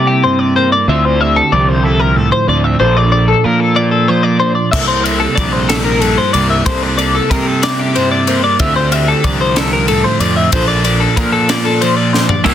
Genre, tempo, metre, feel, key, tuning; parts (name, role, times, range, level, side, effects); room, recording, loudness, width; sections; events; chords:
math rock and midwest emo; 62 BPM (dotted quarters); 6/8; straight; A4 = 439 Hz
twelve-string electric guitar; accompaniment; 0.0-12.4 s; G2 to A4; -17 LUFS; right 5 dB; plate reverb
twelve-string electric guitar; arpeggios; 0.0-12.5 s; G4 to E5; -14 LUFS; left 4 dB; wide subtle chorus, plate reverb
fuzz picked electric bass; bass; 0.0-12.5 s; Bb1 to C3; -16 LUFS; equal; overdrive
crisp fusion drum kit; drums; 4.7-12.5 s; crash cymbal, kick drum, ride cymbal, snare drum, toms; -17 LUFS; left 2 dB
raw garage guitar; riff; 12.4-12.5 s; C3 to E4; -11 LUFS; right 1 dB; overdrive
light reverb; dense, heavily limited modern master; -10 LUFS; side -10 dB against mid
0.0-12.5 A section
drum fill 12.1-12.5
0.0 C13; 0.9 Dm9; 2.8 Bbmaj9; 4.7 C13; 8.6 Dm9; 10.5 Bbmaj9